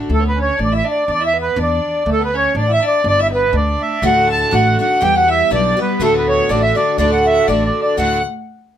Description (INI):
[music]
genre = celtic folk, Celtic polka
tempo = 122 BPM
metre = 2/4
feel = swing 54% on 8ths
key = D major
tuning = A4 = 440 Hz
[part]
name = picked twelve-string acoustic guitar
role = accompaniment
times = 0.0-0.1, 4.0-8.2 s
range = D2 to G4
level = -19 LUFS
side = left 2 dB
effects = none
[part]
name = accordion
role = melody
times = 0.1-8.2 s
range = A4 to A5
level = -16 LUFS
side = right 1 dB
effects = none
[part]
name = dark fiddle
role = second line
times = 0.1-8.2 s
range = A4 to A5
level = -26 LUFS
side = left 7 dB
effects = none
[part]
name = warm flugelhorn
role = second line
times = 0.1-8.2 s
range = A3 to A4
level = -26 LUFS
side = right 2 dB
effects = none
[part]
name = upright bass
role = bass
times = 0.1-8.2 s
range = G1 to E2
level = -20 LUFS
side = equal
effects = none
[sound]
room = moderate small room reverb, RT60 0.5 s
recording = none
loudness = -13 LUFS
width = side -10 dB against mid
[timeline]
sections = 0.1-8.0 A section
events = none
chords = 0.1 D5; 1.1 Bmadd11/E; 2.1 D5; 3.0 G5; 4.0 D; 5.0 Em; 6.0 D